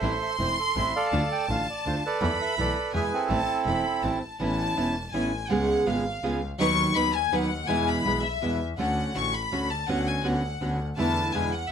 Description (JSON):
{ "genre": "tango", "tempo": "165 BPM", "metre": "3/4", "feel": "rubato", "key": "A minor, A major from 4.4 s", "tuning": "A4 = 440 Hz", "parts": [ { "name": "bandoneon", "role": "melody", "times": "0.0-4.2 s", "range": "C4 to G5", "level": "-28 LUFS", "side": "right 4 dB", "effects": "none" }, { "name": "warm chamber violin section", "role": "second line", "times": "0.0-11.7 s", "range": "E5 to C#6", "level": "-29 LUFS", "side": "left 3 dB", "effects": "none" }, { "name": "nylon-string guitar", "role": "accompaniment", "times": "0.0-11.7 s", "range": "B2 to B4", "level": "-27 LUFS", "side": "right 2 dB", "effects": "none" }, { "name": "bright double bass", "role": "bass", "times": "0.0-11.7 s", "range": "E1 to E2", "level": "-32 LUFS", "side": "left 1 dB", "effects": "none" } ], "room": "light reverb", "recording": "close, detailed microphones", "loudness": "-24 LUFS", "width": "side -7 dB against mid", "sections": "0.0-4.4 A section; 4.4-11.7 B section", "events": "violin section solo 4.4-11.7", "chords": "0.0 Am; 1.1 Dm; 2.2 Esus4; 2.9 E; 3.3 Am; 4.4 Aadd9; 5.5 C#7; 6.6 B/D#; 7.7 E; 8.8 Dmaj7; 9.9 Bmadd9/D; 11.0 E7sus4", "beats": "| 0.03 0.40 0.76 | 1.13 1.49 1.85 | 2.21 2.57 2.94 | 3.30 3.66 4.03 | 4.40 4.77 5.14 | 5.50 5.87 6.23 | 6.59 6.96 7.32 | 7.68 8.05 8.41 | 8.78 9.15 9.52 | 9.88 10.25 10.61 | 10.97 11.34 11.70" }